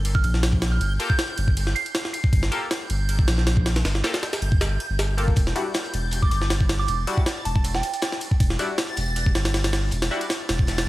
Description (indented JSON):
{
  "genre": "drum and bass, jungle",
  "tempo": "158 BPM",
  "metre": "4/4",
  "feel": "straight",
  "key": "unclear",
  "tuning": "A4 = 441 Hz",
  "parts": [
    { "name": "saturated sub bass", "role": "bass", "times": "0.0-10.9 s", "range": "E1 to Bb1", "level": "-23 LUFS", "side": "equal", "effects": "none" },
    { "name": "jungle sampler-style drum kit", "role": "drums", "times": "0.0-10.9 s", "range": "kick drum, ride cymbal, snare drum", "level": "-23 LUFS", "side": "equal", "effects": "none" },
    { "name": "backwards swelling texture", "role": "texture", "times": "0.0-10.9 s", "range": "G6 to A6", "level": "-35 LUFS", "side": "right 1 dB", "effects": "built-in reverb" },
    { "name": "soft synth bell", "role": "melody", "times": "0.1-2.4, 6.2-8.1 s", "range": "G5 to C7", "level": "-31 LUFS", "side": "right 3 dB", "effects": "chorus, phaser, vintage 12-bit sampler grit, dub echo" },
    { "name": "band-passed chord stab", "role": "stabs", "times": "1.0-10.2 s", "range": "G3 to A4", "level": "-31 LUFS", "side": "left 2 dB", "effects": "chorus, phaser, dub echo" },
    { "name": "crunchy breakbeat drum kit", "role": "drums", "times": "5.4-10.9 s", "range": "hi-hat, snare drum", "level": "-39 LUFS", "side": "left 2 dB", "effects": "none" }
  ],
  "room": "digital ambience",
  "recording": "vinyl crackle",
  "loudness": "-20 LUFS",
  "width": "side -17 dB against mid",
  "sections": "0.0-10.9 A section",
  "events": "none",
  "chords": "0.0 Gm; 5.4 Em",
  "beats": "0.05 0.43 | 0.81 1.19 1.57 1.95 | 2.33 2.71 3.09 3.47 | 3.85 4.23 4.61 4.99 | 5.37 5.75 6.12 6.50 | 6.88 7.26 7.64 8.02 | 8.40 8.78 9.16 9.54 | 9.92 10.30 10.68"
}